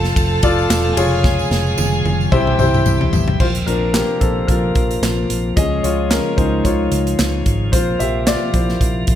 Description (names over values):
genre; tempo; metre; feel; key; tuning
piano-driven pop; 111 BPM; 4/4; swing 56% on 16ths; unclear; A4 = 441 Hz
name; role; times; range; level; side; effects
warm studio violin section; second line; 0.0-3.4 s; G4 to A5; -24 LUFS; right 2 dB; ping-pong delay
warm concert grand piano; accompaniment; 0.0-9.2 s; C3 to E5; -19 LUFS; left 2 dB; none
tonewheel organ; sustained chords; 0.0-9.2 s; C3 to F4; -26 LUFS; equal; slow rotary speaker
vintage muted fingered electric bass; bass; 0.0-9.2 s; E1 to Db2; -20 LUFS; equal; none
natural country drum kit; drums; 0.0-9.2 s; crash cymbal, handclaps, hi-hat, kick drum, ride cymbal, snare drum, toms; -19 LUFS; equal; none
tambourine; percussion; 0.0-3.3 s; none; -33 LUFS; right 10 dB; none
room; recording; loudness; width
moderate recital hall reverb, RT60 1.5 s; none; -14 LUFS; side -11 dB against mid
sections
0.0-3.4 A section; 3.4-9.2 B section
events
drum fill 1.2-3.4; grand piano solo 3.4-9.2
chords
0.0 F; 1.0 Db/F; 2.3 C; 3.4 Bbsus2; 5.6 Db; 7.7 Bbsus2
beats
0.16 0.70 | 1.24 1.78 2.32 2.86 | 3.40 3.94 4.49 5.03 | 5.57 6.11 6.65 7.19 | 7.73 8.27 8.81